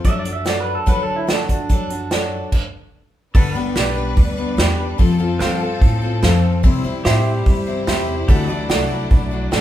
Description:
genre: honky-tonk and classic country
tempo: 146 BPM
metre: 4/4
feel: straight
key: G major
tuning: A4 = 440 Hz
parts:
  - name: picked steel-string acoustic guitar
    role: accompaniment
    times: 0.0-9.6 s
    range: G2 to D5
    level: -23 LUFS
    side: left 4 dB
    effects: none
  - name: upright bass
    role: bass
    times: 0.0-9.6 s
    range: G1 to D3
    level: -23 LUFS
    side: equal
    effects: none
  - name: unplugged drum kit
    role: drums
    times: 0.0-9.6 s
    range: crash cymbal, hi-hat, kick drum, snare drum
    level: -17 LUFS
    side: equal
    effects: none
  - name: pedal steel guitar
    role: second line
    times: 0.1-2.6 s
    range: D4 to E5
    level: -25 LUFS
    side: right 2 dB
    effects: none
  - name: warm upright piano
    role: accompaniment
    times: 0.5-9.6 s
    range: F#4 to F5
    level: -25 LUFS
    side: right 4 dB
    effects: none
  - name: clear symphonic string section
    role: sustained chords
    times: 3.3-9.6 s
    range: C3 to B4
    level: -28 LUFS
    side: left 2 dB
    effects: none
  - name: pedal steel guitar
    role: sustained chords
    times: 3.3-9.6 s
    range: F#4 to G5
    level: -30 LUFS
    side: right 1 dB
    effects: none
room: moderate large studio reverb, RT60 0.9 s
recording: band playing live in one room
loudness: -15 LUFS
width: side -12 dB against mid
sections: 0.0-3.3 A section; 3.3-9.6 B section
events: stop 2.5-3.3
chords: 0.0 D/F#; 3.3 G; 5.0 F; 6.6 C; 8.3 Dadd9

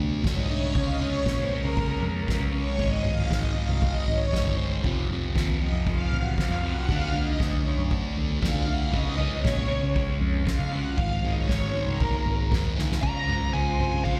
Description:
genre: psychedelic rock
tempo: 117 BPM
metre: 4/4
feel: straight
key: unclear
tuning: A4 = 442 Hz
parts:
  - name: fuzz guitar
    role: riff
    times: 0.0-14.2 s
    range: F2 to Ab4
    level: -33 LUFS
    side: equal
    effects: distortion, phaser
  - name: vintage muted fingered electric bass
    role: bass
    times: 0.0-14.2 s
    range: F1 to Db3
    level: -33 LUFS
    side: equal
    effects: none
  - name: metallic inharmonic drone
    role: drone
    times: 0.0-13.1 s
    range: F2 to C3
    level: -44 LUFS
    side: equal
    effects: none
  - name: string machine, full ensemble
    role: sustained chords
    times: 0.2-14.2 s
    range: F4 to Gb5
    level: -35 LUFS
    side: equal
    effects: ensemble chorus
  - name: soft-mallet drum kit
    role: drums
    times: 0.2-14.2 s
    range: crash cymbal, kick drum, snare drum, toms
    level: -29 LUFS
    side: equal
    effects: none
  - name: fuzz lead guitar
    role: melody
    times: 13.0-14.2 s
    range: F5 to Bb5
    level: -31 LUFS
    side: equal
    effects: wah, distortion
room: light reverb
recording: none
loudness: -26 LUFS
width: mono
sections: 0.0-13.0 A section; 13.0-14.2 B section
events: string machine solo 0.0-13.0; drum fill 12.8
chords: 0.0 D5; 0.8 Db; 2.8 Ab; 4.8 F5; 6.9 D; 8.9 Db; 11.0 Ab; 13.0 Dbmaj7

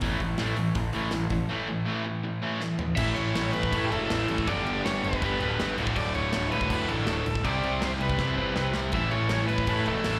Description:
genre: punk rock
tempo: 161 BPM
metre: 4/4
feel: straight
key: unclear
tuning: A4 = 443 Hz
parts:
  - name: distorted electric guitar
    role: riff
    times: 0.0-10.2 s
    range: D2 to C4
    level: -35 LUFS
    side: equal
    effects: distortion, slapback echo
  - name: distorted electric guitar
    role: riff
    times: 0.0-10.2 s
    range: D2 to C5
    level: -35 LUFS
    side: equal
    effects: overdrive, slapback echo
  - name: distorted electric guitar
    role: riff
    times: 0.0-10.2 s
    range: D2 to C4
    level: -39 LUFS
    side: equal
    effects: none
  - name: fuzz picked electric bass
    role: bass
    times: 0.0-10.2 s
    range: D1 to A2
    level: -33 LUFS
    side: equal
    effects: overdrive
  - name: big rock drum kit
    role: drums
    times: 0.0-10.1 s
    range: crash cymbal, hi-hat, kick drum, snare drum, toms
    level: -36 LUFS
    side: equal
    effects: none
  - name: overdriven electric guitar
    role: melody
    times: 3.0-10.2 s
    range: G4 to E5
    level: -33 LUFS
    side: equal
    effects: none
room: little or no reverb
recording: live gig heard through the venue's PA, club reverb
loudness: -27 LUFS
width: mono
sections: 0.0-3.0 A section; 3.0-10.2 B section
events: drum fill 2.6-3.0, 8.2-8.9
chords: 0.0 A5; 3.0 A; 4.5 G; 5.8 D; 7.4 C; 8.9 A

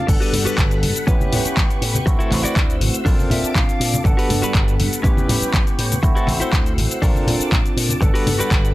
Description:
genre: filtered disco house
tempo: 121 BPM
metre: 4/4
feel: straight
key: G major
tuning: A4 = 441 Hz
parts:
  - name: barky tine electric piano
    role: accompaniment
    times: 0.0-8.7 s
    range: A3 to F#5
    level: -24 LUFS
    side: equal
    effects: overdrive, phaser, sidechain pumping, low-pass filter
  - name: string machine, full ensemble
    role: sustained chords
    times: 0.0-8.7 s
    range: G3 to E6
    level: -29 LUFS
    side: equal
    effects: phaser, ensemble chorus, sidechain pumping, low-pass filter
  - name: direct-recorded clean electric guitar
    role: riff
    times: 0.0-8.7 s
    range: C#4 to F5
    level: -26 LUFS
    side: left 1 dB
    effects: sidechain pumping, low-pass filter
  - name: slap bass with an envelope filter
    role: bass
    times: 0.1-8.7 s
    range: G1 to Bb2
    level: -22 LUFS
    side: equal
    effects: sidechain pumping, low-pass filter
  - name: electronic kick drum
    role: drums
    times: 0.1-8.6 s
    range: none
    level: -18 LUFS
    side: equal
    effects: none
  - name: punchy analog drum machine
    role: drums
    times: 0.1-8.7 s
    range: crash cymbal, handclaps, hi-hat, shaker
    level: -24 LUFS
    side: left 2 dB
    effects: overdrive, sidechain pumping on hats, sidechain pumping on cymbals, sidechain pumping on perc
  - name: egg shaker and congas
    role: percussion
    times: 0.1-8.6 s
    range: none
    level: -26 LUFS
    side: left 1 dB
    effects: sidechain pumping on perc, low-pass filter on perc
room: little or no reverb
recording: none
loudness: -15 LUFS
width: side -17 dB against mid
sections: 0.0-8.7 A section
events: clean electric guitar fill 3.1-4.1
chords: 0.1 Gmaj7; 1.1 A9; 2.1 D9; 3.1 Bbmaj7; 4.1 Gmaj7; 5.0 A9; 6.0 D9; 7.0 Bbmaj7; 8.0 Gmaj7

